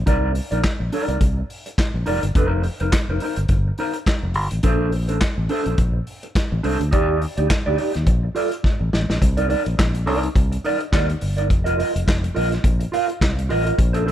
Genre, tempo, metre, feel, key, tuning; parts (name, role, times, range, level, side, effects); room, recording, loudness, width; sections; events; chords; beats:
disco; 105 BPM; 4/4; swing 56% on 16ths; C dorian; A4 = 440 Hz
fingered electric bass; bass; 0.0-14.1 s; F1 to Eb2; -22 LUFS; equal
mellow electric guitar; accompaniment; 0.1-14.1 s; D4 to F5; -23 LUFS; right 2 dB; harmonic tremolo
vintage drum kit; drums; 0.1-14.1 s; handclaps, hi-hat, kick drum, snare drum; -21 LUFS; equal
little or no reverb; -18 LUFS; side -11 dB against mid
0.0-9.2 A section; 9.2-14.1 B section
drum fill 8.6-9.2
0.1 Cm9; 2.4 F7sus4; 4.6 Bbmaj9; 6.9 Ebmaj7; 8.1 Bbmaj7; 9.2 Cm9; 11.5 F7sus4
| 0.07 0.64 1.21 1.79 | 2.36 2.93 3.50 4.07 | 4.64 5.22 5.79 6.36 | 6.93 7.50 8.07 8.65 | 9.22 9.79 10.36 10.93 | 11.50 12.07 12.65 13.22 | 13.79